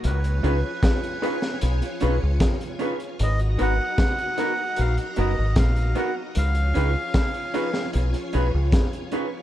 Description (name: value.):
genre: lovers rock reggae.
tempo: 76 BPM.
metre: 4/4.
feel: straight.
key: unclear.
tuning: A4 = 440 Hz.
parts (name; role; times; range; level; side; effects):
string machine, full ensemble; second line; 0.0-9.4 s; F4 to Bb5; -33 LUFS; left 1 dB; ensemble chorus.
deep dub fingered electric bass; bass; 0.0-8.7 s; Gb1 to Db2; -22 LUFS; equal; none.
crunchy breakbeat drum kit; drums; 0.0-9.3 s; hi-hat, kick drum, snare drum; -24 LUFS; equal; tape echo.
melodica; melody; 0.1-7.9 s; Cb5 to Gb5; -29 LUFS; equal; tape echo.
warm concert grand piano; accompaniment; 0.4-9.3 s; Eb4 to Cb5; -32 LUFS; left 3 dB; tape echo.
electric guitar through a small old amp; stabs; 0.4-9.3 s; Cb4 to Cb5; -31 LUFS; right 6 dB; spring reverb.
room: little or no reverb.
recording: dark, warm production.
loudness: -21 LUFS.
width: side -13 dB against mid.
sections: 0.0-9.4 A section.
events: none.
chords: 0.0 Db7; 3.2 Abm9; 6.4 Db7.